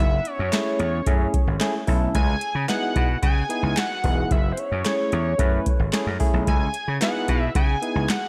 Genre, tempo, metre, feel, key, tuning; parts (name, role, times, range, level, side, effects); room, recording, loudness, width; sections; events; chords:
early-eighties boogie funk; 111 BPM; 4/4; straight; C# minor; A4 = 439 Hz
fat analog lead; melody; 0.0-8.3 s; B#4 to G#5; -30 LUFS; equal; chorus, analog delay
gritty slap bass; bass; 0.0-8.1 s; E1 to C#3; -27 LUFS; equal; overdrive
booming analog drum machine; drums; 0.3-8.2 s; handclaps, hi-hat, kick drum, snare drum; -25 LUFS; equal
barky tine electric piano; accompaniment; 0.5-8.1 s; A3 to B4; -31 LUFS; equal; overdrive
moderate lush hall reverb, RT60 2.0 s; dreamy mix soaked in reverb; -23 LUFS; mono
0.0-8.3 A section
0.0 F#m9; 2.1 C#m7; 4.3 F#m9; 6.5 C#m7